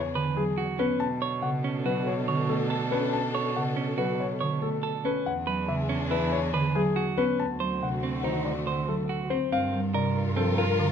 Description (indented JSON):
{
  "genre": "classical, minimalist pattern music",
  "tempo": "141 BPM",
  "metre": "5/4",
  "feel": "straight",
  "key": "B dorian",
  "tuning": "A4 = 441 Hz",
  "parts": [
    { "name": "warm concert grand piano", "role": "melody", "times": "0.0-10.9 s", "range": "G#4 to A5", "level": "-30 LUFS", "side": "left 9 dB", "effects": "none" },
    { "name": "warm studio string section", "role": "sustained chords", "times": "0.0-10.9 s", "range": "C4 to Bb4", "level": "-36 LUFS", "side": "left 4 dB", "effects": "none" },
    { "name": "rich cello", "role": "bass", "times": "0.0-10.9 s", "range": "D2 to B2", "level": "-32 LUFS", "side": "right 3 dB", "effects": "none" },
    { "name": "folk marimba with soft mallets", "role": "accompaniment", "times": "0.2-10.9 s", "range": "C3 to C#4", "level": "-30 LUFS", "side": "right 2 dB", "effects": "none" },
    { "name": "clean electric guitar", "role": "arpeggios", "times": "0.2-10.9 s", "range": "C4 to C#5", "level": "-32 LUFS", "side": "right 7 dB", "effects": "none" }
  ],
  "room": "light reverb",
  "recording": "close, detailed microphones",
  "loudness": "-25 LUFS",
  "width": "side -8 dB against mid",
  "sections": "0.0-9.5 A section; 9.5-10.9 B section",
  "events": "none",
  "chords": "0.0 E9; 1.0 Bm7; 5.3 E9; 7.4 D7b9; 9.5 Gm7",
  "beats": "0.15 0.58 | 1.01 1.43 1.86 2.28 2.71 | 3.13 3.56 3.98 4.41 4.83 | 5.26 5.69 6.11 6.54 6.96 | 7.39 7.81 8.24 8.66 9.09 | 9.52 9.94 10.37 10.79"
}